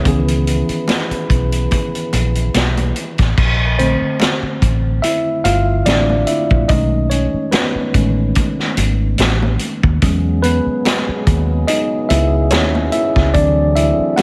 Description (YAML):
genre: lush 1970s-style soul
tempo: 72 BPM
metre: 4/4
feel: swing 54% on 16ths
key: unclear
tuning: A4 = 441 Hz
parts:
  - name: tine electric piano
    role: accompaniment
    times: 0.0-14.2 s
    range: D3 to F#5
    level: -20 LUFS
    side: equal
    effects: overdrive
  - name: mellow French horn section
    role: sustained chords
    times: 0.0-3.3, 10.0-14.2 s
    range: B2 to B4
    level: -28 LUFS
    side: equal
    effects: none
  - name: vintage muted fingered electric bass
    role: bass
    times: 0.0-14.0 s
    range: G1 to E2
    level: -19 LUFS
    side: equal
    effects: none
  - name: vintage drum kit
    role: drums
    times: 0.1-14.2 s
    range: crash cymbal, hi-hat, kick drum, snare drum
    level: -20 LUFS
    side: equal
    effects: none
  - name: congas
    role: percussion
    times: 0.9-14.2 s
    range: none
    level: -29 LUFS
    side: equal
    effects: none
room: light reverb, studio reverb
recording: none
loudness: -16 LUFS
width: mono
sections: 0.0-3.4 A section; 3.4-14.2 B section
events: tine electric piano solo 3.4-14.2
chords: 0.0 C#m7; 3.4 A#maj9; 6.7 B13; 10.0 E6; 13.3 D9